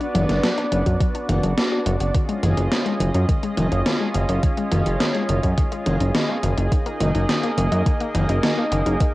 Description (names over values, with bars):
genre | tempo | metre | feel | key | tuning
synthwave | 105 BPM | 4/4 | straight | unclear | A4 = 437 Hz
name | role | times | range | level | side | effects
lush unison pad | sustained chords | 0.0-9.1 s | A#3 to D#5 | -25 LUFS | right 1 dB | chorus, sidechain pumping
analog pluck | arpeggios | 0.0-9.1 s | D#3 to F#4 | -28 LUFS | left 4 dB | chorus, tape echo
gated 80s digital drum machine | drums | 0.0-9.1 s | hi-hat, snare drum, toms | -24 LUFS | equal | gated reverb, gated reverb snare, overdrive, cassette tape
fat analog bass | bass | 0.1-9.0 s | F#1 to F#2 | -20 LUFS | equal | tube saturation, sidechain pumping
electronic kick drum | drums | 0.9-9.1 s | none | -20 LUFS | equal | overdrive, cassette tape
room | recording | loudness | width
light reverb | home recording on cassette | -18 LUFS | side -18 dB against mid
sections
0.0-9.1 A section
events
filter sweep on synth arpeggio sound 0.0-9.1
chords
0.0 Bm/F#; 2.1 C#add9/F#; 6.7 G#sus2/F#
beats
0.43 1.00 1.57 | 2.15 2.72 3.29 3.86 | 4.43 5.00 5.58 6.15 | 6.72 7.29 7.86 8.43 | 9.00